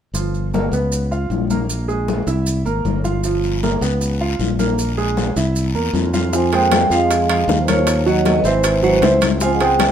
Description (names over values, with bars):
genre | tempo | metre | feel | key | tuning
Afro-Cuban jazz | 155 BPM | 4/4 | straight | F minor | A4 = 440 Hz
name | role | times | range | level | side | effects
clear concert grand piano | accompaniment | 0.1-9.9 s | F3 to Gb5 | -21 LUFS | right 4 dB | none
modern bright fingered electric bass | bass | 0.1-9.9 s | G1 to F2 | -20 LUFS | left 1 dB | none
congas | percussion | 0.1-9.9 s | none | -24 LUFS | left 6 dB | none
maracas | percussion | 0.1-9.9 s | none | -32 LUFS | right 4 dB | none
guiro | percussion | 3.2-9.9 s | none | -31 LUFS | left 6 dB | none
bongos | percussion | 6.3-9.9 s | none | -24 LUFS | left 6 dB | none
vibraphone with medium mallets | melody | 6.4-9.9 s | B4 to Ab5 | -18 LUFS | right 2 dB | none
trombone with cup mute | second line | 6.4-9.9 s | Db3 to C4 | -24 LUFS | left 4 dB | none
timbales | percussion | 6.5-9.9 s | none | -25 LUFS | right 5 dB | none
room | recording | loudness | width
light reverb | minimal, uncompressed stereo recording | -15 LUFS | side -9 dB against mid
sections
0.1-6.3 A section; 6.3-9.9 B section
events
none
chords
0.1 Gm7b5; 0.9 Db6; 1.7 Bbsus2; 2.5 C7b13; 3.2 Gm7b5; 4.0 Db6; 4.8 Bbsus2; 5.6 C7; 6.3 Fm11; 7.9 Ebm7; 8.6 Abaug7; 9.4 Dbmaj7